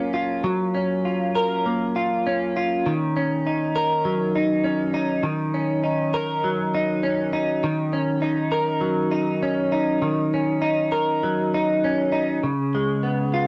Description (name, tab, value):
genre	indie pop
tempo	100 BPM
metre	4/4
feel	swing 60% on 16ths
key	unclear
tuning	A4 = 440 Hz
part	direct-recorded clean electric guitar	solo	0.0-13.5 s	C#3 to A#4	-23 LUFS	equal	lush chorus, vibrato effect, cassette tape
room	moderate studio reverb, RT60 0.6 s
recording	home recording on cassette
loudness	-23 LUFS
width	mono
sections	0.0-13.5 A section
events	none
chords	0.0 F#maj7; 2.8 D#m7; 12.4 C#7